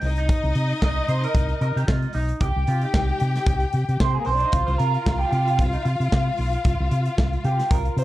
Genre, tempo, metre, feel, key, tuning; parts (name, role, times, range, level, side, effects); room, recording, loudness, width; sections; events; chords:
disco; 113 BPM; 4/4; swing 56% on 16ths; A4 = 440 Hz
clear studio string section; second line; 0.0-8.0 s; Bb3 to G5; -28 LUFS; left 3 dB
electric guitar at the edge of break-up; accompaniment; 0.0-8.0 s; Eb4 to Eb5; -27 LUFS; right 4 dB; wah, lush chorus
hollow-body short-scale fingered electric bass; bass; 0.0-8.0 s; B1 to C3; -23 LUFS; equal
modern studio drum kit; drums; 0.0-8.0 s; hi-hat, kick drum, snare drum; -24 LUFS; equal; vintage 12-bit sampler grit
little or no reverb; dark, warm production; -20 LUFS; side -15 dB against mid
0.0-8.0 A section
clean electric guitar solo 0.0-8.0
0.0 Eb5; 2.4 Abmaj7 (rootless); 4.5 Eb69 (rootless)